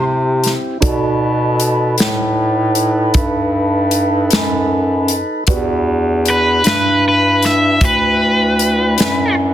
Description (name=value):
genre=slow blues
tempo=52 BPM (dotted quarters)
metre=12/8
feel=straight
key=E minor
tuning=A4 = 440 Hz
part: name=cranked stack guitar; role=melody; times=0.0-9.3 s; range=B4 to E5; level=-14 LUFS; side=equal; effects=overdrive
part: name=dark upright piano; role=accompaniment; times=0.0-9.5 s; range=D#4 to D5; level=-24 LUFS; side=right 5 dB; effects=none
part: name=mellow tonewheel organ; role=sustained chords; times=0.0-9.5 s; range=C4 to B4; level=-20 LUFS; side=equal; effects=slow rotary speaker
part: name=clear bass clarinet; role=bass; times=0.0-9.5 s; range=D2 to C3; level=-16 LUFS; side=equal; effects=none
part: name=natural country drum kit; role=drums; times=0.4-9.2 s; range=hi-hat, kick drum, snare drum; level=-18 LUFS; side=left 1 dB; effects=none
room=light reverb, small room ambience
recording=dense, heavily limited modern master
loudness=-12 LUFS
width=side -11 dB against mid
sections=0.0-9.5 A section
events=none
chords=0.0 Cmaj7; 0.8 B7#9; 5.5 Em7